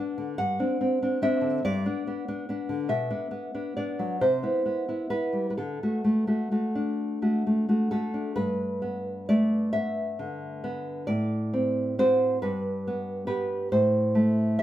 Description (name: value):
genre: romantic piece for solo classical guitar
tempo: 42-48 BPM (dotted quarters)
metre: 6/8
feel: rubato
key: G major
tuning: A4 = 436 Hz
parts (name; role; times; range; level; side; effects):
- nylon-string guitar; solo; 0.0-14.6 s; G2 to F#5; -24 LUFS; equal; none
room: moderate large studio reverb, RT60 0.9 s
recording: band playing live in one room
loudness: -24 LUFS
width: side -13 dB against mid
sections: 0.0-8.4 A section; 8.4-14.6 B section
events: none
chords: 0.4 D7/G; 1.6 G; 2.9 Bm; 4.2 Cmaj7; 5.6 D; 8.4 G; 11.1 D7/A; 12.4 G; 13.7 Am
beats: | 0.36 1.62 | 2.89 4.20 | 5.59 6.99 | 8.39 9.76 | 11.11 12.43 | 13.73